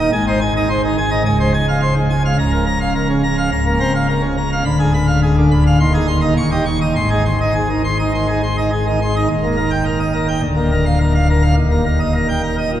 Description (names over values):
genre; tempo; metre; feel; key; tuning
classical, organ toccata; 105 BPM; 4/4; straight; Ab major, Eb major from 9.3 s; A4 = 443 Hz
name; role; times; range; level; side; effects
pipe organ, plenum; solo; 0.0-12.8 s; Db1 to Db6; -14 LUFS; equal; none
room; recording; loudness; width
wet cathedral reverb, RT60 5.5 s; heard from further back in the room; -14 LUFS; side -11 dB against mid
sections
0.0-9.3 A section; 9.3-12.8 B section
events
none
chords
0.1 Ab; 1.2 Dbmaj7; 2.4 Bbm/Db; 4.6 Ddim7; 5.8 Ab/Eb; 6.4 Eb7; 6.9 Ab; 9.3 Eb; 10.4 Bb/D; 11.6 Eb